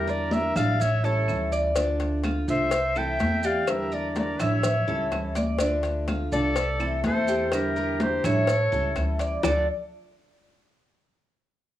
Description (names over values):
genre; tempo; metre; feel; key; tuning
latin, Cuban son and guajira; 125 BPM; 4/4; straight; D minor; A4 = 440 Hz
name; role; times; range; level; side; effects
clear clarinet; melody; 0.0-9.7 s; Bb4 to G5; -28 LUFS; equal; cassette tape, plate reverb
breathy bright jazz flute; second line; 0.0-9.7 s; G4 to E5; -32 LUFS; left 3 dB; cassette tape, plate reverb
nylon-string guitar; accompaniment; 0.0-9.6 s; D3 to F4; -30 LUFS; equal; cassette tape, plate reverb
Cuban tres; arpeggios; 0.0-9.7 s; D4 to E5; -31 LUFS; right 1 dB; cassette tape, plate reverb
upright bass; bass; 0.0-9.7 s; A1 to E2; -29 LUFS; equal; none
congas; percussion; 0.1-9.6 s; none; -31 LUFS; equal; none
maracas; percussion; 0.1-9.6 s; none; -42 LUFS; right 5 dB; none
claves; percussion; 0.6-9.6 s; none; -38 LUFS; right 6 dB; none
cowbell and bongos; percussion; 1.8-9.5 s; none; -30 LUFS; left 5 dB; none
room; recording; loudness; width
moderate studio ambience, RT60 0.5 s; home recording on cassette, small room ambience; -22 LUFS; side -13 dB against mid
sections
0.0-9.4 A section; 9.4-11.4 B section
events
none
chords
0.0 Em7b5; 0.8 A7; 1.8 Dm; 2.7 C6; 3.7 Em7b5; 4.6 A7; 5.6 Dm; 6.6 C6; 7.5 Em7b5; 8.5 A7; 9.4 D5